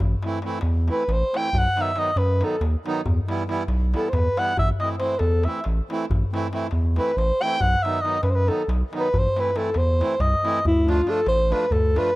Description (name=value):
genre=balkan folk, Balkan wedding band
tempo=277 BPM (eighths)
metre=7/8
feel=straight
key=A dorian sharp4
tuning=A4 = 440 Hz
part: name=saturated sub bass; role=bass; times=0.0-12.0 s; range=A1 to F#2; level=-21 LUFS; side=equal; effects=none
part: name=darbuka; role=percussion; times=0.0-12.1 s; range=none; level=-29 LUFS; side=left 1 dB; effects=none
part: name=accordion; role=accompaniment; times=0.2-12.1 s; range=D#3 to F4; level=-29 LUFS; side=right 3 dB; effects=none
part: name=mellow alto saxophone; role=melody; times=0.9-12.2 s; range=E4 to G5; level=-23 LUFS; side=equal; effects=none
room=small room ambience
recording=dry, close 1970s-style studio recording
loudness=-20 LUFS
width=side -19 dB against mid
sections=0.0-10.6 A section; 10.6-12.2 B section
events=alto saxophone solo 0.0-10.6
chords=0.0 Am; 1.5 B; 3.1 Em; 4.6 Am; 7.6 B; 9.1 Am; 10.6 Dm